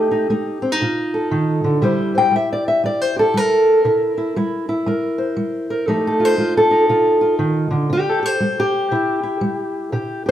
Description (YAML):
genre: acoustic country blues, solo or duo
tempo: 118 BPM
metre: 4/4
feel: swing 63% on 8ths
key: C mixolydian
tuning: A4 = 440 Hz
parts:
  - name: fingerpicked steel-string acoustic guitar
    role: solo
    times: 0.0-10.3 s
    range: C3 to G5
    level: -16 LUFS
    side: equal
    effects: none
room: moderate large studio reverb, RT60 1.0 s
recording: band playing live in one room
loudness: -16 LUFS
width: side -11 dB against mid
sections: 0.0-10.3 A section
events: none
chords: 0.0 F7; 1.8 C7; 5.9 F7; 7.9 C